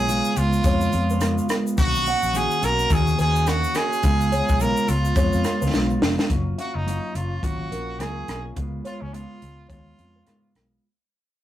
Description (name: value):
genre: indie pop, bedroom pop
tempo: 106 BPM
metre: 4/4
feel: swing 60% on 16ths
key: unclear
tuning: A4 = 440 Hz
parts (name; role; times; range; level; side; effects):
- brilliant trumpet; melody; 0.0-10.5 s; C#4 to A#4; -25 LUFS; right 2 dB; none
- mellow electric guitar; accompaniment; 0.0-10.8 s; B2 to F#4; -26 LUFS; equal; warbly pitch drift
- vintage muted fingered electric bass; bass; 0.0-10.8 s; E#1 to G#2; -25 LUFS; equal; none
- compact cocktail drum kit; drums; 0.1-10.7 s; hi-hat, kick drum, rim click, shaker, snare drum; -24 LUFS; equal; none
- tube shaker; percussion; 0.1-6.3 s; none; -46 LUFS; right 4 dB; none
- buzzing kalimba; second line; 0.7-10.3 s; A#4 to F#5; -32 LUFS; equal; none
room: moderate studio reverb, RT60 0.6 s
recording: rough rehearsal-room recording, warm saturation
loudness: -20 LUFS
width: side -12 dB against mid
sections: 0.0-6.3 A section; 6.3-10.8 B section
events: drum fill 5.7-6.3; fade-out 6.3-10.8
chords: 0.0 C#7; 1.8 Bmaj9; 4.0 C#7; 6.3 F#maj7; 8.6 C#7